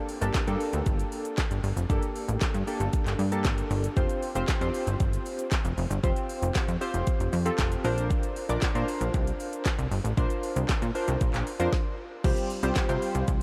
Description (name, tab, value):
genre	dance-pop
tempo	116 BPM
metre	4/4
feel	straight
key	G minor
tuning	A4 = 441 Hz
part	chorused retro synth keys	accompaniment	0.0-13.4 s	G3 to D5	-33 LUFS	equal	tremolo, sidechain pumping
part	deep house drum kit	drums	0.1-13.4 s	crash cymbal, handclaps, hi-hat, kick drum, shaker, snare drum	-31 LUFS	equal	none
part	plucky analog bass	bass	0.2-13.4 s	F1 to C3	-31 LUFS	equal	sidechain pumping
part	group handclap	percussion	0.3-12.9 s	none	barely audible	none	none
room	light reverb, digital ambience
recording	none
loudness	-28 LUFS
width	mono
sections	0.0-12.2 A section; 12.2-13.4 A section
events	stop 11.7-12.2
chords	0.0 Gmadd9; 4.0 Fsus2; 7.8 Bbadd9; 12.2 Csus4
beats	0.35 0.86 1.38 | 1.90 2.42 2.93 3.45 | 3.97 4.48 5.00 5.52 | 6.04 6.55 7.07 7.59 | 8.11 8.62 9.14 9.66 | 10.17 10.69 11.21 11.73 | 12.24 12.76 13.28